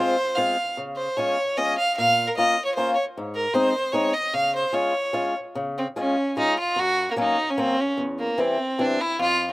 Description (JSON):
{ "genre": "alpine folk", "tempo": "149 BPM", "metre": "3/4", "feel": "straight", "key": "Db major", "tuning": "A4 = 441 Hz", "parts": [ { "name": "clear fiddle", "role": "melody", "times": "0.0-9.5 s", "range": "Bb3 to F5", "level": "-22 LUFS", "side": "right 1 dB", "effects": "none" }, { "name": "fingerpicked swing-style acoustic guitar", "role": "accompaniment", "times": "0.0-9.5 s", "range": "E2 to F4", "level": "-25 LUFS", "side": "left 2 dB", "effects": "slapback echo" } ], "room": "little or no reverb", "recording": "recorded outdoors, with no room sound", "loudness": "-21 LUFS", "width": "side -18 dB against mid", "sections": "0.0-5.6 A section; 5.6-9.5 A section", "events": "none", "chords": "0.0 Fm; 0.8 Db; 2.0 Bbm; 3.1 Ab; 4.3 Db; 6.8 Gb; 8.0 C/E", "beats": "0.36 | 0.77 1.17 1.57 | 1.97 2.36 2.76 | 3.15 3.54 3.94 | 4.34 4.74 5.15 | 5.56 5.97 6.37 | 6.78 7.17 7.58 | 7.98 8.38 8.78 | 9.19" }